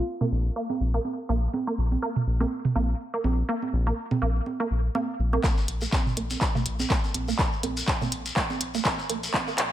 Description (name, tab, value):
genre	minimal techno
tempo	123 BPM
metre	4/4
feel	swing 56% on 16ths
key	unclear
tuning	A4 = 438 Hz
part	resonant blip pluck	riff	0.2-9.5 s	Bb3	-32 LUFS	right 2 dB	chorus, sidechain pumping, dub echo
part	electronic toms and congas	percussion	0.2-9.4 s	none	-30 LUFS	right 4 dB	overdrive, dub echo
part	round analog bass	bass	0.3-9.7 s	Bb1	-26 LUFS	left 1 dB	sidechain pumping
part	dusty soul sampler-style drum kit	drums	5.4-9.7 s	hi-hat, snare drum, tambourine	-39 LUFS	equal	none
part	electronic kick drum	drums	5.4-9.4 s	none	-27 LUFS	left 1 dB	none
part	minimal click drum kit	drums	5.4-9.7 s	handclaps, hi-hat	-28 LUFS	equal	low-pass filter on hats, low-pass filter on snare
part	shekere	percussion	5.4-9.6 s	none	-36 LUFS	left 3 dB	none
room	light reverb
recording	high-pass filter, low-pass filter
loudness	-24 LUFS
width	side -12 dB against mid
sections	0.0-5.4 A section; 5.4-9.7 B section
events	filter sweep on synth pluck 0.0-5.4, 5.4-9.7; filter sweep 0.0-5.4, 5.4-9.7; build-up 5.4-9.7; drum fill 5.4-9.7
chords	0.0 Bb5; 5.4 N.C.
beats	0.07 0.56 1.05 | 1.53 2.02 2.51 3.00 | 3.49 3.97 4.46 4.95 | 5.44 5.92 6.41 6.90 | 7.39 7.88 8.36 8.85 | 9.34